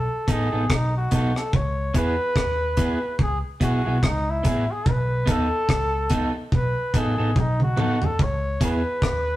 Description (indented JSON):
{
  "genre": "roots reggae",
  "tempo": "72 BPM",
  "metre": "4/4",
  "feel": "swing 58% on 16ths",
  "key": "C# minor",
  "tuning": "A4 = 440 Hz",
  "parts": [
    { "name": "clear flugelhorn", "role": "melody", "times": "0.0-9.4 s", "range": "D#4 to C#5", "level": "-26 LUFS", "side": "equal", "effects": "none" },
    { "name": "vintage muted fingered electric bass", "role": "bass", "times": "0.0-9.4 s", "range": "A1 to E2", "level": "-26 LUFS", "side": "equal", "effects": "none" },
    { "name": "electric guitar at the edge of break-up", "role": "accompaniment", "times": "0.3-8.8 s", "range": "B3 to A4", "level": "-26 LUFS", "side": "right 2 dB", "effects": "none" },
    { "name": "deep reggae drum kit", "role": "drums", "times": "0.3-9.3 s", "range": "hi-hat, kick drum, rim click, toms", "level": "-23 LUFS", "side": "equal", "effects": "none" }
  ],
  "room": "wet stone room reverb, RT60 0.9 s",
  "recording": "rough rehearsal-room recording, tube saturation, cassette tape",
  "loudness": "-20 LUFS",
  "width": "side -15 dB against mid",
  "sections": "0.0-9.4 A section",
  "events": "drum fill 7.4-8.2",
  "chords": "0.0 B7; 1.5 C#m7; 4.9 B7; 8.2 C#m7"
}